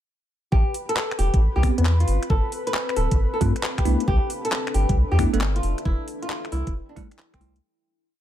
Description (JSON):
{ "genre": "UK garage, two-step garage", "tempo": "135 BPM", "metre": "4/4", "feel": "swing 67% on 16ths", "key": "unclear", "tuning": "A4 = 440 Hz", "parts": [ { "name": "flamenco guitar", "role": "melody", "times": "0.5-7.5 s", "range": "C4 to B4", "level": "-28 LUFS", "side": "equal", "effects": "none" }, { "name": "warm analog pad", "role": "sustained chords", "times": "0.5-7.6 s", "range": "B4 to B5", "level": "-36 LUFS", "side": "left 4 dB", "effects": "chorus, tremolo, sidechain pumping" }, { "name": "soft dub sub bass", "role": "bass", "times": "0.5-7.6 s", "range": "D1 to G2", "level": "-21 LUFS", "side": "equal", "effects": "none" }, { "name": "electronic kick drum", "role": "drums", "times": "0.5-7.4 s", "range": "none", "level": "-22 LUFS", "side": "equal", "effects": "studio reverb" }, { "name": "deep dark ambient pad", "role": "texture", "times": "2.1-7.6 s", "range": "C4 to G5", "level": "-37 LUFS", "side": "left 1 dB", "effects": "chorus, built-in reverb, sidechain pumping" }, { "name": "garage drum kit", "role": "drums", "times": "0.7-7.6 s", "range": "finger snaps, handclaps, hi-hat", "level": "-30 LUFS", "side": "left 1 dB", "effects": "studio reverb" }, { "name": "bell-like tine electric piano", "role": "stabs", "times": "1.6-7.6 s", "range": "G3 to B4", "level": "-27 LUFS", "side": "right 1 dB", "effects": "medium stereo tremolo, low-pass filter, tape echo" } ], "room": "little or no reverb", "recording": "none", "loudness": "-20 LUFS", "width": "side -12 dB against mid", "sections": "0.5-7.6 groove", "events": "fade-in on ambient pad 0.5-7.6; filter sweep on tine electric piano 0.5-7.6; fade-out 5.3-7.6", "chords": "0.5 Am9; 2.1 G9sus4; 3.9 Cmaj13; 5.6 Fmaj9" }